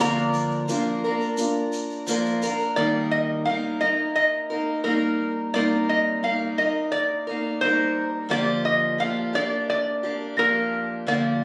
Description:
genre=acoustic folk duo or small band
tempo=87 BPM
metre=4/4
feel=straight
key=Bb major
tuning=A4 = 437 Hz
part: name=metal-body resonator slide guitar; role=melody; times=0.0-11.4 s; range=Bb4 to Bb5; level=-26 LUFS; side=equal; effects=none
part: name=pedal steel guitar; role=second line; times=0.0-2.0 s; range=D5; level=-36 LUFS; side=equal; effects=none
part: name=picked acoustic archtop guitar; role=accompaniment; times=0.0-11.4 s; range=C3 to Bb4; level=-27 LUFS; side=equal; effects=none
part: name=felt-muted upright piano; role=arpeggios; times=0.0-2.8 s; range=Bb3 to F4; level=-31 LUFS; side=equal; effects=none
part: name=tube shaker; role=percussion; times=0.0-2.7 s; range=none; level=-38 LUFS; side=equal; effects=none
room=moderate small room reverb, RT60 0.5 s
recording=recorded on a phone in the room, studio reverb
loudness=-24 LUFS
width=mono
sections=0.0-2.8 A section; 2.8-11.4 B section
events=none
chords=0.0 Bb/D; 2.8 Eb; 5.5 Cm7; 8.3 Bb6/D

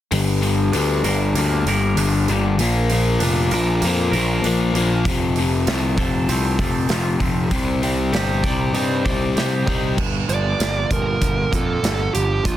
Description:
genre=quiet-loud alternative rock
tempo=97 BPM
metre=4/4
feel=straight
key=G minor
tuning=A4 = 440 Hz
part: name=twangy electric guitar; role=arpeggios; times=0.1-12.6 s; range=G2 to D5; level=-28 LUFS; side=right 4 dB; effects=none
part: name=overdriven electric guitar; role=riff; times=0.1-10.0 s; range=F2 to C4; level=-21 LUFS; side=left 5 dB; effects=phaser
part: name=fuzz picked electric bass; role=bass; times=0.1-12.6 s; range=F1 to G2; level=-21 LUFS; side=equal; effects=overdrive
part: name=big rock drum kit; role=drums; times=0.1-12.6 s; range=crash cymbal, hi-hat, kick drum, snare drum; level=-25 LUFS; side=right 1 dB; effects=none
part: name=fuzz lead guitar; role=melody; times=10.3-12.6 s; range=F4 to D5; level=-23 LUFS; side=right 4 dB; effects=distortion
room=little or no reverb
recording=dense, heavily limited modern master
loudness=-17 LUFS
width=side -12 dB against mid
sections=0.1-10.0 A section; 10.0-12.6 B section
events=none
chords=0.1 Gm7; 2.6 Bb; 5.1 F; 7.5 Cmadd9; 10.0 Gm7

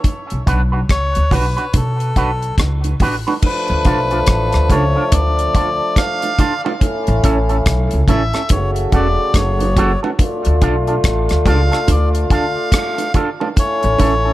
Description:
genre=roots reggae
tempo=71 BPM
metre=4/4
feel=swing 61% on 16ths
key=unclear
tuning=A4 = 444 Hz
part: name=deep reggae drum kit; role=drums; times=0.0-14.2 s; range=crash cymbal, hi-hat, kick drum, rim click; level=-16 LUFS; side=equal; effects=none
part: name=bongos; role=percussion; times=0.0-14.2 s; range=none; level=-25 LUFS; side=right 6 dB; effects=none
part: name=upright bass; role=bass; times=0.3-14.3 s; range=E1 to B2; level=-17 LUFS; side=equal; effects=none
part: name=electric guitar with an envelope filter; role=accompaniment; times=0.5-14.3 s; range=C#4 to B4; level=-23 LUFS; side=right 3 dB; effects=lush chorus, tape echo
part: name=melodica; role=melody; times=0.9-14.3 s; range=A4 to F5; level=-21 LUFS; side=left 1 dB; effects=tape echo
part: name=muted trombone section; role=second line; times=3.4-14.3 s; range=C#3 to F#4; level=-21 LUFS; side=left 1 dB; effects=tape echo
room=light reverb, small room reverb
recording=none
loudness=-13 LUFS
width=side -16 dB against mid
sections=0.0-3.4 A section; 3.4-14.3 B section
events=none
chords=0.0 Bm; 3.4 Dm; 6.8 A; 8.5 F#m; 10.2 Dm; 13.6 A

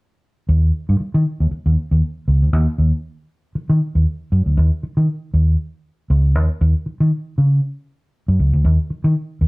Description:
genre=funk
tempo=118 BPM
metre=4/4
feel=swing 56% on 16ths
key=unclear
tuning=A4 = 443 Hz
part: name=vintage muted fingered electric bass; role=solo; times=0.5-9.5 s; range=Db2 to Eb3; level=-15 LUFS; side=equal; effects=none
room=moderate studio reverb, RT60 0.6 s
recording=none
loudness=-16 LUFS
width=side -26 dB against mid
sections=0.5-4.6 A section; 4.6-9.5 B section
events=none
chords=none

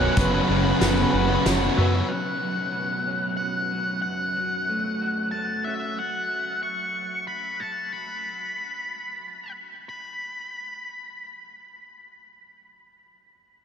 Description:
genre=post-rock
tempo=92 BPM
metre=3/4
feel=straight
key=unclear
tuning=A4 = 439 Hz
part: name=octave-fuzz lead guitar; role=melody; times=0.0-13.0 s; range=B4 to C#6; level=-28 LUFS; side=left 1 dB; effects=distortion, ping-pong delay
part: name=phased analog pad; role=sustained chords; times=0.0-2.1 s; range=F#3 to C#5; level=-34 LUFS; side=right 4 dB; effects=none
part: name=electric guitar through a small old amp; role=arpeggios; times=0.0-6.0 s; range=B1 to F#4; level=-32 LUFS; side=equal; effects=wide subtle chorus, ping-pong delay
part: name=electric guitar through a small old amp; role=arpeggios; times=0.0-2.1 s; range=A4 to B4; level=-36 LUFS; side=right 4 dB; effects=wide subtle chorus, ping-pong delay
part: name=sludgy distorted guitar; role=riff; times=0.0-2.1 s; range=F#2 to F#4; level=-30 LUFS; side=right 8 dB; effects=overdrive
part: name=thick fuzz guitar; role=riff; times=0.0-2.1 s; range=F#2 to F#4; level=-29 LUFS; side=left 8 dB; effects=distortion
part: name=growling picked electric bass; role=bass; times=0.0-2.0 s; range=F#1 to F#2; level=-24 LUFS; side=equal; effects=overdrive
part: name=loose indie drum kit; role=drums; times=0.2-1.6 s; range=hi-hat, kick drum, snare drum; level=-28 LUFS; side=equal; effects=none
room=wet huge ambient reverb, RT60 8.7 s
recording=dreamy mix soaked in reverb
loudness=-23 LUFS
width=side -7 dB against mid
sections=0.0-2.1 A section; 2.1-9.9 B section; 9.9-13.6 C section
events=none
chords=0.2 F#sus4; 2.1 Bsus2; 4.0 F#m; 6.0 N.C.

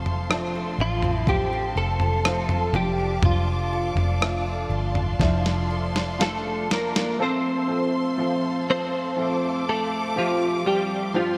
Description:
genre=pop ballad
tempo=61 BPM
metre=4/4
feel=straight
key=F major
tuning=A4 = 440 Hz
part: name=warm upright piano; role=accompaniment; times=0.0-11.4 s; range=G2 to A4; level=-32 LUFS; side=equal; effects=ensemble chorus
part: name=warm studio string section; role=sustained chords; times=0.0-11.4 s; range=G4 to D6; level=-35 LUFS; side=equal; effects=none
part: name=picked steel-string acoustic guitar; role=arpeggios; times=0.0-7.8 s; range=F3 to A4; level=-36 LUFS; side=equal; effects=analog chorus
part: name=vintage muted fingered electric bass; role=bass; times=0.0-7.2 s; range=F1 to A1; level=-29 LUFS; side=equal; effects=none
part: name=boom bap sampler-style drum kit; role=drums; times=0.1-7.2 s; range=kick drum, rim click, snare drum, toms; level=-28 LUFS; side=equal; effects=overdrive
part: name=direct-recorded clean electric guitar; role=melody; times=0.8-11.4 s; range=F3 to C5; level=-28 LUFS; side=equal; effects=ensemble chorus
room=moderate lush hall reverb, RT60 2.5 s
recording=bright 1980s-style digital production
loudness=-24 LUFS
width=mono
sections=0.0-7.2 A section; 7.2-11.4 B section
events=drum fill 5.2-7.2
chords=0.0 F; 2.7 Dm/F; 7.2 F

